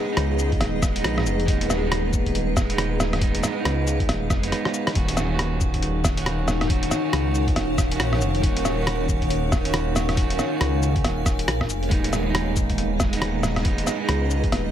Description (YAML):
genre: future garage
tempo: 138 BPM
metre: 4/4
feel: swing 61% on 16ths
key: Eb minor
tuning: A4 = 438 Hz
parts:
  - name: electric guitar at the edge of break-up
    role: accompaniment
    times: 0.0-14.7 s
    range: Eb3 to Gb4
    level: -28 LUFS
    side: right 5 dB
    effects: sidechain pumping, digital delay
  - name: granular cloud pad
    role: sustained chords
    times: 0.0-14.7 s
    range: Eb4 to Ab5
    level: -28 LUFS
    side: left 2 dB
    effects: built-in reverb, sidechain pumping
  - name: dark detuned saw bass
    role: bass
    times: 0.2-14.7 s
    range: Eb1 to Db2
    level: -25 LUFS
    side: equal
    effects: sidechain pumping
  - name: lo-fi sampler-style drum kit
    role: drums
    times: 0.2-14.6 s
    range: cabasa, hi-hat, rim click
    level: -26 LUFS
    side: left 1 dB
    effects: none
  - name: electronic kick drum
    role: drums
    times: 0.5-14.5 s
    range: none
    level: -24 LUFS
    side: equal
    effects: none
room: digital ambience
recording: none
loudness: -20 LUFS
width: side -10 dB against mid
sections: 0.0-5.0 A section; 5.0-14.7 A section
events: drum fill 4.5-5.0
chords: 0.0 Abm/Eb; 5.0 Ebm7; 11.9 Abm/Eb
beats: 0.17 0.61 1.04 | 1.48 1.91 2.35 2.78 | 3.22 3.65 4.09 4.52 | 4.96 5.39 5.83 6.26 | 6.70 7.13 7.57 8.00 | 8.43 8.87 9.30 9.74 | 10.17 10.61 11.04 11.48 | 11.91 12.35 12.78 13.22 | 13.65 14.09 14.52